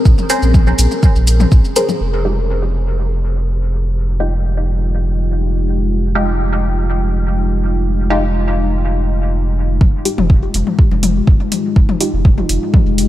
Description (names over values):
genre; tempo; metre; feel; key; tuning
dub techno; 123 BPM; 4/4; straight; F minor; A4 = 437 Hz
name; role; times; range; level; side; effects
deep dark ambient pad; sustained chords; 0.0-13.1 s; Ab3 to Bb4; -21 LUFS; left 2 dB; chorus, built-in reverb, sidechain pumping
pure sine sub bass; bass; 0.1-13.1 s; F1 to Bb1; -16 LUFS; equal; sidechain pumping
electronic kick drum; drums; 0.1-1.6, 9.8-12.8 s; none; -11 LUFS; equal; none
electronic shaker and hi-hat; drums; 0.1-2.0, 10.1-13.1 s; none; -21 LUFS; equal; none
electronic toms and congas; percussion; 0.2-2.0, 9.8-12.8 s; none; -23 LUFS; left 5 dB; sidechain pumping on toms, sidechain pumping on perc, dub echo
filtered dub chord stab; stabs; 0.3-12.1 s; Ab3 to C5; -22 LUFS; equal; phaser, sidechain pumping, dub echo
room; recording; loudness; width
light reverb; none; -12 LUFS; side -14 dB against mid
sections
0.0-2.0 A section; 2.0-9.8 B section; 9.8-13.1 A section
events
filter sweep on ambient pad 2.0-9.8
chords
0.0 Bbm9; 2.0 Fm9